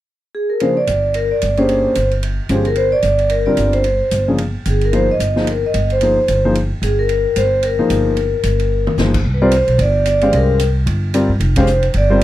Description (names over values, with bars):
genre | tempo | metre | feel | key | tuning
modal jazz | 222 BPM | 4/4 | swing 59% on 8ths | C minor | A4 = 440 Hz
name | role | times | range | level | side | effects
vibraphone with medium hard mallets | melody | 0.3-12.2 s | Ab4 to Eb5 | -16 LUFS | equal | none
warm concert grand piano | accompaniment | 0.6-12.2 s | Db3 to F5 | -18 LUFS | left 2 dB | none
swinging big-band drum kit | drums | 0.6-12.2 s | crash cymbal, hi-hat, kick drum, ride cymbal, snare drum, toms | -27 LUFS | right 1 dB | none
upright bass | bass | 0.9-12.2 s | F1 to G2 | -17 LUFS | equal | none
room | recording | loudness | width
little or no reverb | none | -13 LUFS | side -14 dB against mid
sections
0.6-9.3 A section; 9.3-12.2 B section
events
drum fill 8.7; band accent 11.5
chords
0.0 N.C.; 0.6 C9sus4; 4.9 Ebsus24; 9.3 Csus4